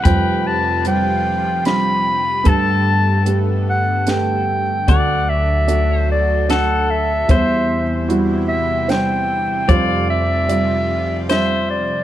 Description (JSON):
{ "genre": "acoustic folk-pop ballad", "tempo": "75 BPM", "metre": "3/4", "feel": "straight", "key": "unclear", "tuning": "A4 = 440 Hz", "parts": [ { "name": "mellow clarinet", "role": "melody", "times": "0.0-12.0 s", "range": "D5 to B5", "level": "-19 LUFS", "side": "equal", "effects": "none" }, { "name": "pedal steel guitar", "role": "second line", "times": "0.0-12.0 s", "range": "A4 to D5", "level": "-26 LUFS", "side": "left 4 dB", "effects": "none" }, { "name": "felt-muted upright piano", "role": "accompaniment", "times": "0.0-12.0 s", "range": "F1 to D5", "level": "-22 LUFS", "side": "right 3 dB", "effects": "none" }, { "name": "lush unison pad", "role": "sustained chords", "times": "0.0-12.0 s", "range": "C3 to A4", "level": "-27 LUFS", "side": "equal", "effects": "chorus, phaser" }, { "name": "upright bass", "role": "bass", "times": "0.0-12.0 s", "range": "D2 to G2", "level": "-20 LUFS", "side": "equal", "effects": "none" }, { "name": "compact cocktail drum kit", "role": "drums", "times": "0.1-11.5 s", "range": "hi-hat, kick drum, snare drum", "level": "-18 LUFS", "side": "equal", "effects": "none" } ], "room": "light reverb", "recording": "none", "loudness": "-15 LUFS", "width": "side -12 dB against mid", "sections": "0.0-12.0 A section", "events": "none", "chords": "0.1 Fsus2; 2.5 Gadd9; 4.9 D; 7.3 C/E; 9.7 Fsus2" }